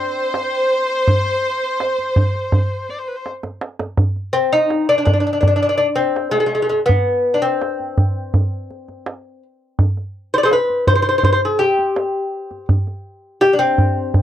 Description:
Persian modal ensemble; 83 BPM; 4/4; straight; C avaz esfahan; A4 = 440 Hz
lute; melody; 0.0-14.2 s; Ab3+50c to D5; -16 LUFS; left 1 dB
clear kamancheh; second line; 0.0-3.3 s; B4 to D5; -22 LUFS; left 3 dB
clear studio violin section; second line; 0.0-3.3 s; C5; -22 LUFS; right 2 dB
tombak; percussion; 0.3-14.2 s; -17 LUFS; right 1 dB
light reverb; dry, close 1970s-style studio recording; -15 LUFS; side -11 dB against mid
0.0-4.0 A section; 4.0-14.2 B section
drum fill 3.3-4.0

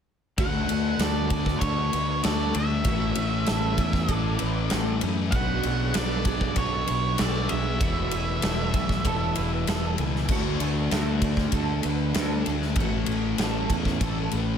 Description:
rock, shoegaze and dream pop; 97 BPM; 4/4; straight; D lydian; A4 = 441 Hz
octave-fuzz lead guitar; melody; 0.4-9.9 s; C#5 to F#5; -31 LUFS; right 3 dB; distortion, analog delay
picked twelve-string acoustic guitar; arpeggios; 0.4-14.6 s; F#4 to G#5; -35 LUFS; right 10 dB; ensemble chorus, analog delay
overdriven electric guitar; riff; 0.4-14.6 s; A2 to B4; -33 LUFS; right 12 dB; reverse reverb
thick fuzz guitar; riff; 0.4-14.6 s; E2 to D4; -29 LUFS; left 10 dB; distortion, lush chorus
growling fingered electric bass; bass; 0.4-14.6 s; E1 to F#2; -29 LUFS; equal; overdrive
huge arena drum kit; drums; 0.4-14.5 s; crash cymbal, kick drum, ride cymbal, snare drum; -28 LUFS; equal
light reverb, small room ambience; -23 LUFS; side -8 dB against mid
0.4-14.6 A section
0.4 Dmaj7; 2.9 Aadd9; 5.3 Bmadd9; 7.8 Esus4; 10.3 D; 12.8 Aadd9

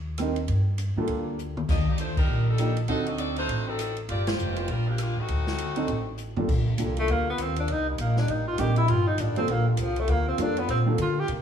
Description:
jazz, big band swing; 200 BPM; 4/4; swing 61% on 8ths; G minor; A4 = 440 Hz
upright bass; bass; 0.0-11.4 s; F1 to D3; -27 LUFS; equal
clear concert grand piano; accompaniment; 0.2-3.7, 5.8-11.0 s; F3 to Bb4; -30 LUFS; right 3 dB
swinging big-band drum kit; drums; 0.2-11.4 s; crash cymbal, hi-hat, kick drum, ride cymbal, rim click, snare drum, toms; -31 LUFS; equal
edgy saxophone section; melody; 1.7-6.2 s; F3 to F#5; -31 LUFS; left 2 dB
bright trombone section; sustained chords; 6.5-11.4 s; C3 to G4; -36 LUFS; left 2 dB
warm tenor saxophone; melody; 7.0-11.3 s; D3 to G4; -27 LUFS; left 1 dB
moderate recital hall reverb, RT60 1.4 s; -23 LUFS; side -8 dB against mid
0.0-6.5 A section; 6.5-11.4 B section
drum fill 1.4, 6.2-6.5; band accent 2.1, 4.2; tenor saxophone solo 6.5-11.4
0.5 Gm7; 1.7 Ebmaj7; 2.9 D7b9; 4.1 Gm7; 5.3 D7b9; 6.5 Gm7; 7.7 Cm7; 8.9 Gm7

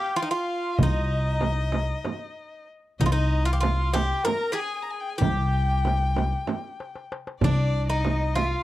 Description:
Turkish makam ensemble; 190 BPM (eighths); 7/8; straight; C makam nihavent; A4 = 440 Hz
Greek bouzouki; melody; 0.0-8.6 s; D4 to Bb4; -28 LUFS; right 1 dB
clear violin; second line; 0.0-8.6 s; D5 to Bb5; -32 LUFS; left 5 dB
upright bass; bass; 0.8-8.5 s; C2; -24 LUFS; equal
darbuka; percussion; 0.8-8.5 s; -29 LUFS; left 2 dB
frame drum; percussion; 0.8-8.5 s; -28 LUFS; right 5 dB
studio reverb; dry, close 1970s-style studio recording; -22 LUFS; side -15 dB against mid
0.0-8.6 A section
drum fill 6.8-7.4

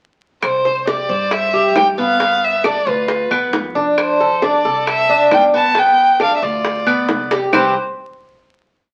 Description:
latin, Cuban son and guajira; 135 BPM; 4/4; straight; C major; A4 = 442 Hz
dark violin; melody; 0.4-7.7 s; B4 to A5; -18 LUFS; equal
upright bass; bass; 0.4-7.7 s; G1 to G2; -34 LUFS; equal
bongos; percussion; 0.4-7.6 s; -25 LUFS; equal
claves; percussion; 0.4-7.6 s; -27 LUFS; equal
Cuban tres; arpeggios; 0.7-7.7 s; B3 to C5; -19 LUFS; equal
wet club reverb, RT60 0.7 s; very old 78 rpm record, vinyl crackle; -15 LUFS; mono
0.4-7.5 verse; 7.5-8.9 final chord
drum fill 7.3
0.4 Cmaj7; 2.2 G7; 4.0 F6; 5.8 G7; 7.5 C5

